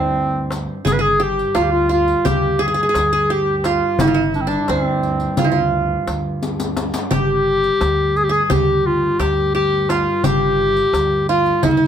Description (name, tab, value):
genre	Turkish makam ensemble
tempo	173 BPM (eighths)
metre	9/8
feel	straight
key	G makam hicaz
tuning	A4 = 439 Hz
part	clear clarinet	melody	0.0-11.9 s	C4 to B4	-18 LUFS	left 2 dB	none
part	qanun	second line	0.0-11.9 s	C4 to Ab4	-21 LUFS	right 4 dB	none
part	upright bass	bass	0.0-11.9 s	G1 to D2	-24 LUFS	right 1 dB	none
part	warm double bass	drone	0.0-11.9 s	G2	-29 LUFS	equal	none
part	darbuka	percussion	0.2-11.8 s	none	-23 LUFS	left 1 dB	none
part	riq	percussion	0.5-11.8 s	none	-28 LUFS	left 4 dB	none
room	light reverb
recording	none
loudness	-15 LUFS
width	side -9 dB against mid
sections	0.0-11.9 A section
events	drum fill 6.4-7.1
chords	none